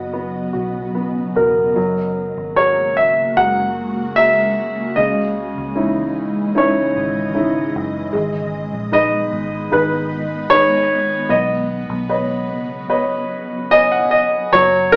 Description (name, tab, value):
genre	pop ballad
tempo	75 BPM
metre	4/4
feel	straight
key	unclear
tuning	A4 = 438 Hz
part	warm grand piano	melody	0.0-15.0 s	A#4 to F#5	-18 LUFS	equal	none
part	clear upright piano	accompaniment	0.0-15.0 s	C#3 to G#5	-24 LUFS	equal	none
part	ethereal airy pad	sustained chords	0.0-14.5 s	C#3 to D#5	-27 LUFS	equal	ensemble chorus, built-in reverb, phaser
part	vintage muted fingered electric bass	bass	0.0-15.0 s	E1 to C#2	-33 LUFS	equal	none
room	moderate large studio reverb, RT60 0.9 s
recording	band playing live in one room, small speaker sound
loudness	-18 LUFS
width	mono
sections	0.0-1.8 A section; 1.8-14.5 B section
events	upright piano fill 13.3-14.5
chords	0.0 Badd9; 1.8 F#add9; 5.0 C#madd9; 8.1 G#m; 11.3 Badd9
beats	0.15 0.96 | 1.77 2.57 3.38 4.18 | 4.98 5.77 6.56 7.36 | 8.15 8.94 9.73 10.52 | 11.30 12.10 12.90 13.71 | 14.53